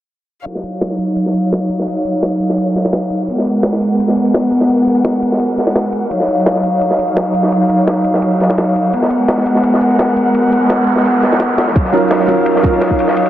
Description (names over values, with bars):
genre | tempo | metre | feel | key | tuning
liquid drum and bass | 170 BPM | 4/4 | straight | Eb minor | A4 = 442 Hz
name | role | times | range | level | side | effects
muted chamber string section | sustained chords | 0.5-13.3 s | Gb3 to Gb5 | -13 LUFS | equal | sidechain pumping
crunchy breakbeat drum kit | drums | 0.5-13.3 s | ride cymbal, snare drum | -19 LUFS | equal | high-pass filter on cymbals, studio reverb, high-pass filter on snare, high-pass filter on room
electronic hi-hat | drums | 0.5-13.2 s | none | -45 LUFS | right 2 dB | none
noise sweep | sound effects | 10.5-11.8 s | none | -24 LUFS | right 2 dB | none
electronic kick drum | drums | 11.8-13.0 s | none | -14 LUFS | equal | studio reverb
clear grand piano | accompaniment | 11.9-13.3 s | Gb3 to Bb4 | -13 LUFS | right 2 dB | digital delay
room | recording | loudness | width
moderate huge ambient reverb, RT60 3.7 s | dense, heavily limited modern master, low-pass filter | -12 LUFS | side -12 dB against mid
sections
0.5-13.3 A section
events
filter sweep 0.5-13.3; noise sweep 10.5-11.8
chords
0.5 Ebm9; 3.3 Abm9; 6.1 Ebm9; 8.9 Abm9; 11.8 Ebm9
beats
| 0.46 0.81 1.17 1.52 | 1.87 2.23 2.58 2.93 | 3.29 3.64 3.99 4.34 | 4.70 5.05 5.40 5.76 | 6.11 6.46 6.81 7.17 | 7.52 7.87 8.23 8.58 | 8.93 9.29 9.64 9.99 | 10.34 10.70 11.05 11.40 | 11.76 12.11 12.46 12.81 | 13.17